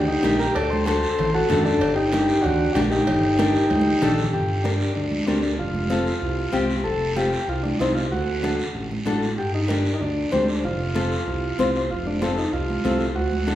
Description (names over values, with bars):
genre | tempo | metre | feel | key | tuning
latin, cumbia | 190 BPM | 4/4 | straight | G harmonic minor | A4 = 441 Hz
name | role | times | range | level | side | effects
combo organ | melody | 0.0-13.6 s | C4 to D5 | -23 LUFS | equal | none
smooth synth bass | bass | 0.0-13.6 s | F1 to F#2 | -27 LUFS | equal | none
congas | percussion | 0.1-13.6 s | none | -29 LUFS | right 2 dB | none
nylon-string guitar | accompaniment | 0.2-13.6 s | C4 to C5 | -26 LUFS | left 2 dB | none
cowbell and timbales | percussion | 0.2-4.2 s | none | -34 LUFS | right 3 dB | none
guiro | percussion | 0.2-13.6 s | none | -34 LUFS | right 2 dB | none
room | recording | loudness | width
wet recital hall reverb, RT60 1.4 s | recorded in a church or concert hall, studio reverb | -20 LUFS | side -12 dB against mid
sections
0.0-4.3 A section; 4.3-13.6 B section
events
drum fill 3.7-4.3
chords
0.0 Gm; 0.6 D7; 1.8 Gm; 5.6 F; 8.1 D; 9.4 Gm; 10.6 F